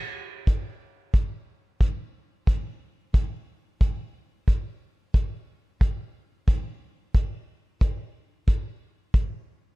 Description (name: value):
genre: pop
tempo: 90 BPM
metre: 4/4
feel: swing 60% on 16ths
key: none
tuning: none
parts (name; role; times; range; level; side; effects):
- kick drum; drums; 0.5-9.3 s; none; -22 LUFS; equal; none
room: little or no reverb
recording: dark, warm production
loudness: -24 LUFS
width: side -20 dB against mid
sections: 0.0-9.8 A section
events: none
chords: none